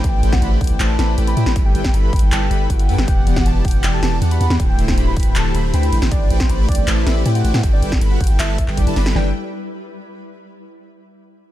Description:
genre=future bass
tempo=158 BPM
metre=4/4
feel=half-time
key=G major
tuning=A4 = 439 Hz
part: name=warm velvety synth lead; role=melody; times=0.0-9.3 s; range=C5 to B5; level=-28 LUFS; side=equal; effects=chorus, tremolo, sidechain pumping, ping-pong delay
part: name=shimmering ambient pad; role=sustained chords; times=0.0-9.3 s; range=D3 to B4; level=-32 LUFS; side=left 2 dB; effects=chorus, built-in reverb, vintage 12-bit sampler grit, sidechain pumping
part: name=airy dreamy lead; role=arpeggios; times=0.0-9.3 s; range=F#5 to B5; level=-31 LUFS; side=equal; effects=chorus, sidechain pumping
part: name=soft supersaw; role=riff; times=0.0-9.3 s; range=D3 to B5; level=-24 LUFS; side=equal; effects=sidechain pumping
part: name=long sustained 808-style bass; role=bass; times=0.0-9.3 s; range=D1 to A2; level=-18 LUFS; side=equal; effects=sidechain pumping
part: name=big-room dance drum kit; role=drums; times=0.0-9.2 s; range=handclaps, kick drum, snare drum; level=-17 LUFS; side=equal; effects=none
part: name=big-room dance drum kit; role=drums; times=0.0-9.1 s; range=handclaps, hi-hat, snare drum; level=-25 LUFS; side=equal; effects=none
room=digital ambience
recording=none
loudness=-14 LUFS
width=side -14 dB against mid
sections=0.0-9.2 A section; 9.2-10.7 B section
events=drop 0.0-9.2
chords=0.0 Am11; 1.6 G6; 3.1 Em9; 4.6 D7sus4; 6.1 Am11; 7.6 G6

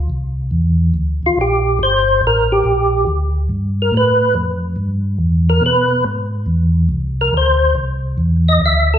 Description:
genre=soul jazz organ trio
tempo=141 BPM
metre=4/4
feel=swing 66% on 8ths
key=unclear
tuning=A4 = 442 Hz
part: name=mellow tonewheel organ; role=bass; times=0.0-9.0 s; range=G1 to B2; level=-16 LUFS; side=equal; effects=chorus vibrato, slow rotary speaker
part: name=percussive tonewheel organ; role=melody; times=1.3-9.0 s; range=F4 to E5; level=-15 LUFS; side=equal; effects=slow rotary speaker, chorus vibrato
room=wet large studio reverb, RT60 1.2 s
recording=heard from further back in the room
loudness=-13 LUFS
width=side -9 dB against mid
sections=0.0-9.0 A section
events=tonewheel organ solo 0.0-9.0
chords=0.1 C9; 3.5 G9; 5.2 E; 6.9 Cadd9

